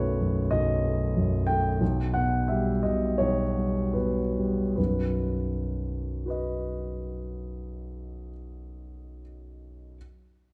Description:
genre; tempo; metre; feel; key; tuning
classical, romantic character piece for solo piano; 69-99 BPM; 4/4; rubato; B major; A4 = 440 Hz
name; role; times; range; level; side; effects
warm concert grand piano; solo; 0.0-10.0 s; B1 to G5; -28 LUFS; equal; none
room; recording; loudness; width
moderate scoring stage reverb, RT60 1.7 s; dark, warm production; -27 LUFS; mono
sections
0.0-4.8 A section; 4.8-7.7 B section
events
slowing down 0.0-4.8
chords
0.0 B7; 1.8 Baug; 4.8 B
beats
0.51 1.14 | 1.80 2.49 3.19 3.96 | 4.78 5.52 6.26 7.00

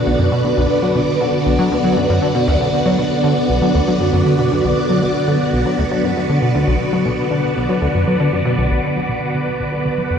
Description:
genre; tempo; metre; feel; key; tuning
ambient, sequencer-driven space music; 118 BPM; 4/4; straight; B minor; A4 = 440 Hz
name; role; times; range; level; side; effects
phased string machine; sustained chords; 0.0-10.2 s; D3 to D5; -17 LUFS; equal; ensemble chorus, phaser, shimmer reverb
plucky analog bass; riff; 0.0-10.2 s; B1 to F#3; -18 LUFS; equal; lush chorus, ping-pong delay, shimmer reverb
room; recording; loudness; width
wet cathedral reverb, RT60 5.7 s; in a vast, echoing space; -14 LUFS; side -7 dB against mid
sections
0.0-8.7 A section; 8.7-10.2 B section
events
none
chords
0.0 Bm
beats
0.07 | 0.57 1.08 1.59 2.10 | 2.61 3.12 3.62 4.13 | 4.64 5.15 5.66 6.17 | 6.67 7.18 7.69 8.20 | 8.71 9.22 9.73

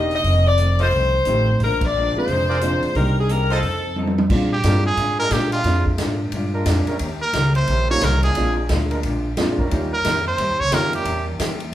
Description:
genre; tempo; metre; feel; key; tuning
jazz, big band swing; 178 BPM; 4/4; swing 63% on 8ths; Bb mixolydian; A4 = 440 Hz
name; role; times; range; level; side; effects
edgy saxophone section; melody; 0.0-4.0 s; Ab4 to Eb5; -21 LUFS; left 2 dB; none
archtop guitar, miked and amplified; accompaniment; 0.0-11.6 s; F2 to A4; -27 LUFS; left 2 dB; none
warm baby grand piano; accompaniment; 0.0-5.8, 7.9-10.9 s; G3 to Ab4; -27 LUFS; right 2 dB; none
upright bass; bass; 0.0-11.7 s; E1 to Bb2; -21 LUFS; equal; none
swinging big-band drum kit; drums; 0.1-11.7 s; crash cymbal, hi-hat, kick drum, ride cymbal, snare drum, toms; -26 LUFS; equal; none
clear trumpet section; stabs; 0.8-3.6 s; F4 to Eb5; -27 LUFS; right 1 dB; none
brilliant trumpet; melody; 4.5-11.3 s; F4 to Db5; -21 LUFS; right 2 dB; none
clear trombone section; sustained chords; 4.6-11.4 s; G3 to Bb4; -30 LUFS; right 1 dB; none
room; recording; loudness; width
wet large studio reverb, RT60 0.8 s; band playing live in one room; -17 LUFS; side -12 dB against mid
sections
0.0-4.3 A section; 4.3-11.7 B section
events
band accent 1.8; drum fill 4.0-4.3; trumpet solo 4.3-11.7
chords
0.2 F7; 1.6 Bb7; 3.0 Cm7; 3.6 F7; 4.3 Bb7; 9.7 Eb7; 11.1 Edim7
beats
| 0.24 0.58 0.92 1.26 | 1.60 1.94 2.28 2.62 | 2.95 3.29 3.63 3.97 | 4.31 4.64 4.98 5.32 | 5.66 6.00 6.33 6.67 | 7.01 7.35 7.68 8.02 | 8.36 8.70 9.03 9.37 | 9.71 10.05 10.38 10.72 | 11.06 11.40

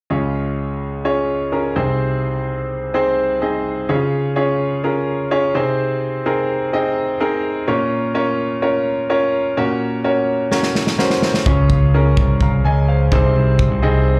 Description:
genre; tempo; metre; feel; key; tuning
piano-driven pop; 127 BPM; 4/4; straight; Db major; A4 = 441 Hz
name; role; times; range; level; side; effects
clear concert grand piano; accompaniment; 0.1-14.2 s; C2 to Bb5; -20 LUFS; equal; slapback echo
natural country drum kit; drums; 10.5-13.7 s; kick drum, snare drum; -20 LUFS; equal; none
modern bright picked electric bass; bass; 11.5-14.2 s; C2 to Db2; -18 LUFS; equal; none
room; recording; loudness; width
moderate club reverb, RT60 0.8 s; live gig heard through the venue's PA, club reverb; -18 LUFS; mono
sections
0.1-3.9 A section; 3.9-14.2 B section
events
drum fill 10.5-11.5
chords
0.1 Db; 1.8 Ab/C; 3.9 Db; 5.5 Ab/C; 7.7 Bbm; 9.6 Gb/Bb; 11.5 Db; 13.1 Ab/C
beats
| 0.09 0.57 1.04 1.52 | 1.99 2.46 2.94 3.41 | 3.89 4.36 4.83 5.31 | 5.78 6.25 6.73 7.20 | 7.68 8.15 8.62 9.10 | 9.57 10.04 10.52 10.99 | 11.46 11.94 12.41 12.88 | 13.36 13.83

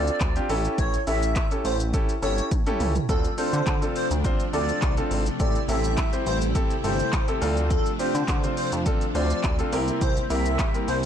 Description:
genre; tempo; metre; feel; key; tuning
dance-pop; 104 BPM; 4/4; straight; D minor; A4 = 440 Hz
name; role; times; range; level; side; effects
airy dreamy lead; melody; 0.0-11.0 s; A4 to E5; -30 LUFS; equal; chorus, sidechain pumping
clear baby grand piano; accompaniment; 0.0-11.0 s; C4 to C5; -28 LUFS; equal; sidechain pumping
chorused synth bass; bass; 0.0-11.1 s; G1 to D3; -26 LUFS; equal; sidechain pumping
deep house drum kit; drums; 0.1-11.1 s; handclaps, hi-hat, kick drum, shaker, toms; -26 LUFS; equal; none
string machine, violins; sustained chords; 3.1-11.1 s; C3 to E4; -32 LUFS; equal; ensemble chorus, sidechain pumping
room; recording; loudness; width
little or no reverb; blown-out, overdriven recording, overdrive; -22 LUFS; side -9 dB against mid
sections
0.0-11.1 A section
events
drum fill 2.5-3.1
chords
0.5 A7; 3.1 Dm7; 5.4 Am7; 7.4 Dm7; 9.7 C7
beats
0.21 | 0.78 1.36 1.94 2.51 | 3.09 3.67 4.25 4.82 | 5.40 5.97 6.55 7.13 | 7.71 8.28 8.86 9.44 | 10.01 10.59

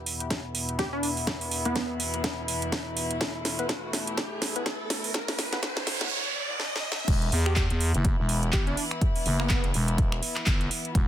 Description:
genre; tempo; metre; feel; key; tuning
bass house; 124 BPM; 4/4; swing 58% on 16ths; unclear; A4 = 436 Hz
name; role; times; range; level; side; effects
warm chamber string section; sustained chords; 0.0-11.1 s; E2 to F#4; -34 LUFS; left 2 dB; sidechain pumping, low-pass filter
riser and noise sweep; sound effects; 1.9-7.1 s; none; -34 LUFS; right 2 dB; none
house drum kit; drums; 0.1-11.1 s; crash cymbal, finger snaps, handclaps, hi-hat, snare drum; -30 LUFS; right 1 dB; none
electronic kick drum; drums; 0.3-11.1 s; none; -26 LUFS; equal; high-pass filter on kick
plucky unison lead; melody; 0.8-2.0, 7.5-9.7 s; B3 to G4; -34 LUFS; equal; ping-pong delay
percussive organ stab; stabs; 1.7-6.1 s; B3 to B4; -38 LUFS; left 2 dB; analog chorus, sidechain pumping, ping-pong delay
growling FM bass; bass; 7.1-11.1 s; E1 to E2; -26 LUFS; equal; overdrive, sidechain pumping
room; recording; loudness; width
little or no reverb; dense, heavily limited modern master, high-pass filter; -25 LUFS; side -11 dB against mid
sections
0.0-7.1 A section; 7.1-11.1 B section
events
build-up 0.0-7.1; drum fill 0.0-6.1, 6.6-7.1; filter sweep on string section 0.0-7.1; riser 1.9-7.1; noise sweep 5.1-7.1; drop 7.1-11.1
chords
0.0 E5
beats
0.30 0.79 | 1.27 1.76 2.24 2.73 | 3.21 3.69 4.18 4.66 | 5.14 5.63 6.11 6.60 | 7.08 7.56 8.05 8.53 | 9.02 9.50 9.98 10.47 | 10.95

